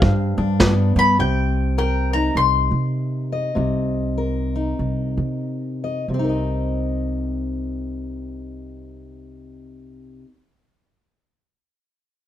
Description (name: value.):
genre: acoustic folk duo or small band.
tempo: 90-103 BPM.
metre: 4/4.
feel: swing 60% on 8ths.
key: C minor.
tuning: A4 = 440 Hz.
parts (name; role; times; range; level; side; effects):
bowl-back mandolin; melody; 0.0-5.4 s; F5 to C6; -21 LUFS; left 3 dB; none.
fingerpicked steel-string acoustic guitar; accompaniment; 0.0-10.3 s; G2 to Eb5; -25 LUFS; left 2 dB; none.
upright bass; bass; 0.0-10.2 s; C2 to C3; -22 LUFS; right 1 dB; none.
vintage brush drum kit; drums; 0.0-0.8 s; kick drum, snare drum; -18 LUFS; right 1 dB; none.
room: light reverb.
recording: none.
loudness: -19 LUFS.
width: side -11 dB against mid.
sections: 0.0-1.2 A section; 1.2-6.1 B section; 6.1-8.7 C section.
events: slowing down 1.2-6.1.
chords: 0.0 G; 1.2 Cm7.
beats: 0.02 0.60 | 1.18 1.76 2.35 2.95 | 3.55 4.17 4.79 5.43 | 6.08 6.75 7.41 8.07.